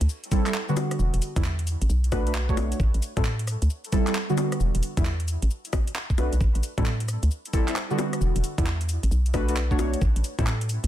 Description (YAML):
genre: UK garage, two-step garage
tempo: 133 BPM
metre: 4/4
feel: swing 64% on 16ths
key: A dorian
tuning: A4 = 440 Hz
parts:
  - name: hollow knocking FM bass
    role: bass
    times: 0.0-10.9 s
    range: E1 to A2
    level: -24 LUFS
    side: equal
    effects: none
  - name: garage drum kit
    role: drums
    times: 0.0-10.9 s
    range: bongos, cabasa, handclaps, hi-hat, rim click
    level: -32 LUFS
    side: left 3 dB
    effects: soft clipping on snare
  - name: deep mellow chord stab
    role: stabs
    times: 0.3-10.5 s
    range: D3 to C#5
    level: -28 LUFS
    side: right 1 dB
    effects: chorus, cassette tape, dub echo
  - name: electronic kick drum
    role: drums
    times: 0.3-10.5 s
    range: none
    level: -25 LUFS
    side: equal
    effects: none
room: little or no reverb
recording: dense, heavily limited modern master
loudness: -22 LUFS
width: side -12 dB against mid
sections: 0.0-10.9 A section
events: none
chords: 0.0 Am7; 0.8 Em7; 1.9 Bm7; 2.8 Am7; 4.4 Em7; 5.5 Bm7; 6.4 Am7; 8.0 Em7; 9.1 Bm7; 10.0 Am7